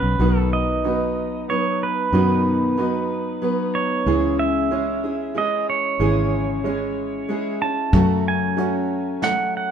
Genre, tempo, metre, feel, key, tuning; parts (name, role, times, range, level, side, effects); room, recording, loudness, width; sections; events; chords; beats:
acoustic folk duo or small band; 93 BPM; 3/4; straight; A4 = 441 Hz
pedal steel guitar; second line; 0.0-9.7 s; B4 to A5; -24 LUFS; right 5 dB
picked steel-string acoustic guitar; accompaniment; 0.0-9.7 s; F#2 to B4; -24 LUFS; left 5 dB
fingered electric bass; bass; 0.0-9.2 s; G#1 to F#2; -23 LUFS; equal
clear upright piano; arpeggios; 0.2-9.7 s; D#3 to G#4; -26 LUFS; right 8 dB
soft brush drum kit; drums; 7.9-9.4 s; hi-hat, kick drum, snare drum; -22 LUFS; equal
moderate large studio reverb, RT60 1.3 s; minimal, uncompressed stereo recording; -19 LUFS; side -8 dB against mid
0.2-9.7 A section
pedal steel guitar solo 0.2-9.7
0.2 B; 4.1 C#m; 7.9 F#m
| 0.20 0.84 1.49 | 2.13 2.78 3.42 | 4.07 4.71 5.36 | 6.00 6.65 7.29 | 7.93 8.58 9.22